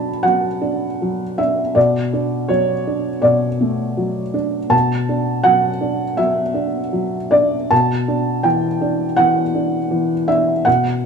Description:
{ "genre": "neoclassical minimalist piano", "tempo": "81 BPM", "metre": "4/4", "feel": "rubato", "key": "unclear", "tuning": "A4 = 440 Hz", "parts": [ { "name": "felt-muted upright piano", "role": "solo", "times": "0.0-11.1 s", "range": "B2 to B5", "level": "-15 LUFS", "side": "equal", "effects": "none" } ], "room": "moderate stone room reverb, RT60 1.1 s", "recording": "band playing live in one room", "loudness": "-15 LUFS", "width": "side -6 dB against mid", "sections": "0.0-11.1 A section", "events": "none", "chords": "0.0 Bm7; 1.8 D/B; 4.7 Bm7; 7.7 Em7/B" }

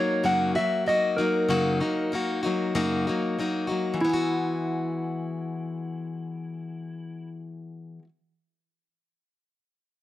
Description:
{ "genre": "rock", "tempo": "96 BPM", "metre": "4/4", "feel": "straight", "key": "E major", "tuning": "A4 = 441 Hz", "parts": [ { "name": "clean lap steel guitar", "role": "melody", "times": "0.0-7.3 s", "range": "E4 to F#5", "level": "-26 LUFS", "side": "equal", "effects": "slapback echo" }, { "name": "picked plugged-in steel-string acoustic guitar", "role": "accompaniment", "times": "0.0-8.1 s", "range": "F#2 to F#4", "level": "-27 LUFS", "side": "left 2 dB", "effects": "none" } ], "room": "moderate studio reverb, RT60 0.7 s", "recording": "none", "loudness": "-24 LUFS", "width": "side -14 dB against mid", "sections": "0.0-4.0 A section; 4.0-6.5 B section", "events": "none", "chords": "0.0 F#6; 4.0 Eadd9" }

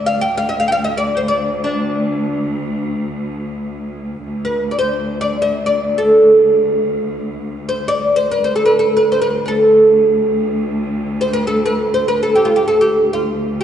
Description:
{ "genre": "Turkish makam ensemble", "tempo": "free time", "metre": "none", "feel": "none", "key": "D makam huseyni", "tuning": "A4 = 436 Hz", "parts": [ { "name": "oud", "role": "melody", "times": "0.0-13.6 s", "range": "D4 to G5", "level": "-14 LUFS", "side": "equal", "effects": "none" }, { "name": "rich studio cello section", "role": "drone", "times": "0.0-13.6 s", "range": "D2", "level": "-23 LUFS", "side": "left 1 dB", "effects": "none" } ], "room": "wet concert hall reverb, RT60 1.9 s", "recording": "recorded in a church or concert hall, nothing above 10.9 kHz", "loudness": "-13 LUFS", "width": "side -9 dB against mid", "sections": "0.0-4.2 A section; 4.2-13.6 A section", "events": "none", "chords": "none" }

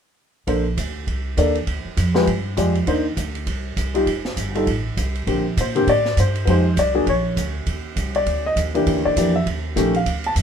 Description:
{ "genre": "jazz piano trio", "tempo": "200 BPM", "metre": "4/4", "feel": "swing 60% on 8ths", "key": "Bb major", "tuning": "A4 = 440 Hz", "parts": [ { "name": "warm baby grand piano", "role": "melody", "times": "0.5-10.3 s", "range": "D3 to A5", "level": "-20 LUFS", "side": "left 2 dB", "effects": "none" }, { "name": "upright bass", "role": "bass", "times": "0.5-10.4 s", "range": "F1 to Bb2", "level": "-22 LUFS", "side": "right 1 dB", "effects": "none" }, { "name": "open jazz drum kit", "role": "drums", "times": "0.5-10.4 s", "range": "hi-hat, kick drum, ride cymbal, snare drum", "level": "-28 LUFS", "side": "right 3 dB", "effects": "none" } ], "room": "light reverb", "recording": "minimal, uncompressed stereo recording", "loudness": "-18 LUFS", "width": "side -8 dB against mid", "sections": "0.5-5.3 A section; 5.3-10.4 B section", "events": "none", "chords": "0.5 Bbmaj9; 1.7 Dm; 2.3 G5; 2.9 Cmadd9; 4.1 Fadd9; 5.3 Bb69; 6.5 Fm9; 7.1 Bbm; 7.7 Ebmaj7(no3); 8.9 Em7b5; 9.5 Eb7#11" }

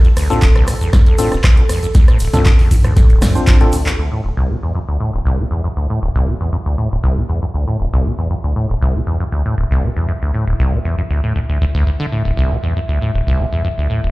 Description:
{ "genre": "acid house", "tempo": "118 BPM", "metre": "4/4", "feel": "straight", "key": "D minor", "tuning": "A4 = 441 Hz", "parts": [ { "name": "dark analog pad", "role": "sustained chords", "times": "0.0-14.1 s", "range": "A4 to E5", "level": "-29 LUFS", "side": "right 1 dB", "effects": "chorus, phaser, sidechain pumping" }, { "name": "acid bass, saw", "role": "riff", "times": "0.0-14.1 s", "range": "D1 to D3", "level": "-16 LUFS", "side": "equal", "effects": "wide subtle chorus, vintage 12-bit sampler grit, digital delay" }, { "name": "punchy analog drum machine", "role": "drums", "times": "0.0-4.0 s", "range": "handclaps, hi-hat, ride cymbal, rim click, snare drum, toms", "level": "-20 LUFS", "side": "equal", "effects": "none" }, { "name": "tube shaker", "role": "percussion", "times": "0.2-4.0 s", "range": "none", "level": "-33 LUFS", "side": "right 2 dB", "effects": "none" }, { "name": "tine electric piano", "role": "stabs", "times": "0.3-3.7 s", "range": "C4 to C5", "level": "-20 LUFS", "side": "left 2 dB", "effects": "fast stereo tremolo, digital delay" }, { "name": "electronic kick drum", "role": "drums", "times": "0.4-3.6 s", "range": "none", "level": "-11 LUFS", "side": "equal", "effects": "overdrive" } ], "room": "light reverb", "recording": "played on a big sound system in a bare room, large studio reverb", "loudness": "-13 LUFS", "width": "side -20 dB against mid", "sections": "0.0-4.0 A section; 4.0-14.1 B section", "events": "drop 0.0-4.0; drum fill 3.5-4.0; filter sweep on analog synth pad 4.0-14.1", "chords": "0.0 Dm7; 4.0 D7(no3)" }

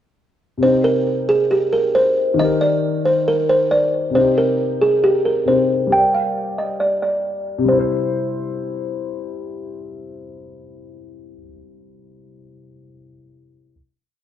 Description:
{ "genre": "hip hop", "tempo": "136 BPM", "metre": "4/4", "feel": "half-time", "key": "C minor", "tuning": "A4 = 440 Hz", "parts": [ { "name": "buzzing kalimba", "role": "melody", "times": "0.6-9.0 s", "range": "G4 to G5", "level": "-16 LUFS", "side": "right 1 dB", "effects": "low-pass filter" }, { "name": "dark concert grand piano", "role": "accompaniment", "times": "0.6-13.7 s", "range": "C3 to D5", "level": "-22 LUFS", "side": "left 4 dB", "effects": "low-pass filter" } ], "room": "light reverb, studio ambience", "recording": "dark, warm production, low-pass filter", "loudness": "-16 LUFS", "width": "side -10 dB against mid", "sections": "0.6-7.7 breakdown; 7.7-11.2 final chord", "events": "filter sweep 0.6-7.7", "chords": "0.6 Cm; 2.4 Eb; 4.2 Cm; 5.9 Gm; 7.7 C" }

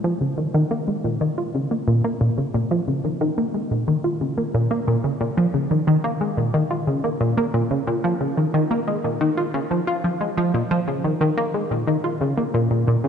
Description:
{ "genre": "ambient", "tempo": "90 BPM", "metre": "4/4", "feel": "straight", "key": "Bb minor", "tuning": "A4 = 441 Hz", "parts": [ { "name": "tight sequenced synth", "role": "solo", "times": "0.0-13.1 s", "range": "Bb2 to F4", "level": "-19 LUFS", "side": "equal", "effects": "chorus, ping-pong delay" } ], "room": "wet plate reverb, RT60 3.5 s", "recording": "dark, warm production, nothing above 10.3 kHz", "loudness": "-19 LUFS", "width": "side -7 dB against mid", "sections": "0.0-13.1 A section", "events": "none", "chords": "none" }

